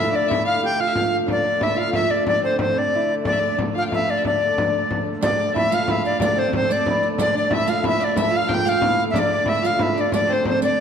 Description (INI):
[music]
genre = medieval dance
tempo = 122 BPM (dotted quarters)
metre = 6/8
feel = straight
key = D minor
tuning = A4 = 440 Hz
[part]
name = bright reedy tenor recorder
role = melody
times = 0.0-10.8 s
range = C5 to G5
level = -21 LUFS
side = left 1 dB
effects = none
[part]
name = lute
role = second line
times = 0.0-10.8 s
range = C4 to G4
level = -26 LUFS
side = right 5 dB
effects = none
[part]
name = warm fiddle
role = second line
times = 0.0-10.8 s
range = C5 to G5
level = -28 LUFS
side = left 5 dB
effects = none
[part]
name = dark hurdy-gurdy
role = drone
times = 0.0-10.8 s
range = D3 to A3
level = -28 LUFS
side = right 2 dB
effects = none
[part]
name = frame drum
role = percussion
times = 0.1-10.6 s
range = none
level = -26 LUFS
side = left 2 dB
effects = none
[part]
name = riq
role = percussion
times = 5.2-10.8 s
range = none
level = -30 LUFS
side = right 5 dB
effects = none
[sound]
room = wet scoring stage reverb, RT60 1.6 s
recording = dark, warm production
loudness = -18 LUFS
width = side -7 dB against mid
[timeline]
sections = 0.0-5.2 A section; 5.2-10.8 A section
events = none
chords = none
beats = | 0.30 0.80 | 1.29 1.78 | 2.27 2.77 | 3.26 3.75 | 4.24 4.74 | 5.23 5.72 | 6.21 6.70 | 7.19 7.68 | 8.17 8.66 | 9.15 9.64 | 10.13 10.62